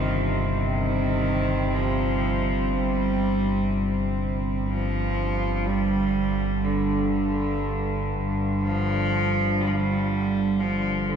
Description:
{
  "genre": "dark ambient drone",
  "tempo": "61 BPM",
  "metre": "4/4",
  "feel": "straight",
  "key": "unclear",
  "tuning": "A4 = 439 Hz",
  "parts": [
    { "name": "rich cello", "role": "melody", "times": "0.0-11.2 s", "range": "D3 to G3", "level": "-26 LUFS", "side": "right 1 dB", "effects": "ping-pong delay" },
    { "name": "rich studio cello section", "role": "sustained chords", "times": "0.0-11.2 s", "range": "G2 to C4", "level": "-27 LUFS", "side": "right 1 dB", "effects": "none" },
    { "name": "analog drone", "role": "drone", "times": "0.0-11.2 s", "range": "G1", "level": "-28 LUFS", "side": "left 1 dB", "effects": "wide subtle chorus" },
    { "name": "bronze singing bowl", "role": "texture", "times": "0.0-11.2 s", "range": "G4", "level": "-48 LUFS", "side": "right 2 dB", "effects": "none" }
  ],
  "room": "wet cathedral reverb, RT60 5.1 s",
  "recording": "dark, warm production",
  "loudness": "-22 LUFS",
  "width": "side -7 dB against mid",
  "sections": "0.0-11.2 A section",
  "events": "fade-out 9.9-11.2",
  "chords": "0.0 Cm; 4.7 G5"
}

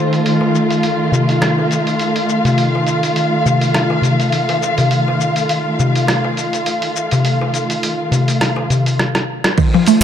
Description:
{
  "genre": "organic downtempo",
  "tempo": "103 BPM",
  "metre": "4/4",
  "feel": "swing 56% on 16ths",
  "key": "F mixolydian",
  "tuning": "A4 = 439 Hz",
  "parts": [
    { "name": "dark symphonic string section", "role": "sustained chords", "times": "0.0-10.0 s", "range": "Eb3 to F5", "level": "-16 LUFS", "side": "equal", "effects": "sidechain pumping" },
    { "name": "dusty soul sampler-style drum kit", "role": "drums", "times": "0.1-10.0 s", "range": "cabasa, crash cymbal, hi-hat, rim click", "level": "-21 LUFS", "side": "equal", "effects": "low-pass filter on hats, low-pass filter on perc, low-pass filter on snare, low-pass filter on cymbals" },
    { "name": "darbuka", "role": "percussion", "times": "0.4-9.8 s", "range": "none", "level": "-18 LUFS", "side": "left 2 dB", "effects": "none" },
    { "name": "mallet-like synth pluck", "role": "arpeggios", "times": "9.6-10.0 s", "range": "Eb3 to A3", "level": "-11 LUFS", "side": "right 2 dB", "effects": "wide subtle chorus" },
    { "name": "electronic kick drum", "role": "drums", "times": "9.6-9.7 s", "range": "none", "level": "-15 LUFS", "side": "right 1 dB", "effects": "none" }
  ],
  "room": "wet lush hall reverb, RT60 1.6 s, digital ambience",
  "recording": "dark, warm production",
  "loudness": "-13 LUFS",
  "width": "side -9 dB against mid",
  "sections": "0.0-9.6 A section",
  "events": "drum fill 9.0-9.6",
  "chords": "0.0 F7"
}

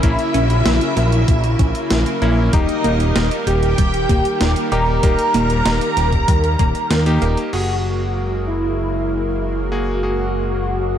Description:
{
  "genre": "synthwave",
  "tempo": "96 BPM",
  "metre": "4/4",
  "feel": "straight",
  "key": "unclear",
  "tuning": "A4 = 440 Hz",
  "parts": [
    { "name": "wide unison lead", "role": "melody", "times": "0.0-11.0 s", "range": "D#4 to A#4", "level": "-21 LUFS", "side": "equal", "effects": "ensemble chorus, cassette tape, tape echo" },
    { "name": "string machine, violins", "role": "second line", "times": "0.0-7.4 s", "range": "D#5 to A#5", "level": "-29 LUFS", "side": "equal", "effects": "ensemble chorus, tape echo" },
    { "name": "lush unison pad", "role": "sustained chords", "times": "0.0-11.0 s", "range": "C#3 to A#3", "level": "-25 LUFS", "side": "right 1 dB", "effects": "chorus, sidechain pumping" },
    { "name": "wide unison pluck", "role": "arpeggios", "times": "0.0-7.4 s", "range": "G3 to A#4", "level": "-26 LUFS", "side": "right 3 dB", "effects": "tape echo" },
    { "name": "bright electric grand piano", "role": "stabs", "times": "0.0-11.0 s", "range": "A#3 to G#4", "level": "-27 LUFS", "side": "left 2 dB", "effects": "none" },
    { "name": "fat analog bass", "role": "bass", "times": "0.0-11.0 s", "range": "D#1 to D#2", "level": "-19 LUFS", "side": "equal", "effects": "sidechain pumping" },
    { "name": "clean 12-bit digital drum machine", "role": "drums", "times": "0.0-7.7 s", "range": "crash cymbal, hi-hat, snare drum", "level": "-24 LUFS", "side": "right 1 dB", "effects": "none" },
    { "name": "electronic kick drum", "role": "drums", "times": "0.0-6.7 s", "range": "none", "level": "-17 LUFS", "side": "equal", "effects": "none" }
  ],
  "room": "light reverb, digital ambience",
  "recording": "dark, warm production",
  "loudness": "-15 LUFS",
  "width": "side -9 dB against mid",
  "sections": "0.0-7.5 A section; 7.5-11.0 B section",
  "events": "none",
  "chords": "0.0 A#dim; 2.5 D#; 7.5 F#add9"
}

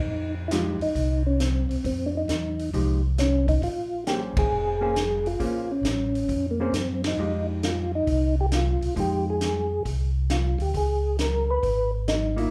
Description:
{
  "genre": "soul jazz organ trio",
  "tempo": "135 BPM",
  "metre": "4/4",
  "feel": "swing 68% on 8ths",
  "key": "F minor",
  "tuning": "A4 = 440 Hz",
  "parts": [
    { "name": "percussive tonewheel organ", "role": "melody", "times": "0.0-12.5 s", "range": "Bb3 to B4", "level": "-29 LUFS", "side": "equal", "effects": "slow rotary speaker, chorus vibrato" },
    { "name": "mellow tonewheel organ", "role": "bass", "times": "0.0-12.5 s", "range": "F1 to Gb2", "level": "-29 LUFS", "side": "equal", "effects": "slow rotary speaker" },
    { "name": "hollow-body jazz guitar", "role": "accompaniment", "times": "0.5-9.7, 12.4-12.5 s", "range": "F3 to C5", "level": "-32 LUFS", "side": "equal", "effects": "none" },
    { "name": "vintage drum kit", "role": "drums", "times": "0.5-12.4 s", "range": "hi-hat, kick drum, ride cymbal, snare drum", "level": "-33 LUFS", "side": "equal", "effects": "none" }
  ],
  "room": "moderate large studio reverb, RT60 0.8 s",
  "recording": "band playing live in one room",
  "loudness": "-25 LUFS",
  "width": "mono",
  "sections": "0.0-12.5 A section",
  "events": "band accent 4.3, 7.0",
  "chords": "0.1 Fm9; 3.6 Bbm9; 7.2 Fm9; 10.7 Db5"
}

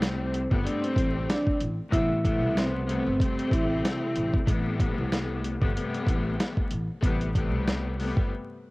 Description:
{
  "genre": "hip hop, boom-bap hip-hop",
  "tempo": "94 BPM",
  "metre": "4/4",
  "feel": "swing 56% on 16ths",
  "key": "A minor",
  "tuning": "A4 = 439 Hz",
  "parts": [
    { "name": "vibraphone with soft mallets", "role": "melody", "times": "0.0-4.4 s", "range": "C4 to E5", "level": "-28 LUFS", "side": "equal", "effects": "high-pass filter, low-pass filter, cassette tape" },
    { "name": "bright studio string section", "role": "accompaniment", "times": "0.0-8.3 s", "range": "C3 to C4", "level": "-31 LUFS", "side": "left 3 dB", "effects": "high-pass filter, low-pass filter" },
    { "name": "upright bass", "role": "bass", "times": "0.0-8.3 s", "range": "G1 to C2", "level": "-31 LUFS", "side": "equal", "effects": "none" },
    { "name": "dusty soul sampler-style drum kit", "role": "drums", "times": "0.0-8.3 s", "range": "hi-hat, kick drum, snare drum", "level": "-27 LUFS", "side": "equal", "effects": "cassette tape" }
  ],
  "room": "light reverb, small room ambience",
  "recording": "home recording on cassette, vinyl crackle",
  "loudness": "-24 LUFS",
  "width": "side -22 dB against mid",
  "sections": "0.0-8.7 A section",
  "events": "break 8.3-8.7",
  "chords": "0.0 Am9"
}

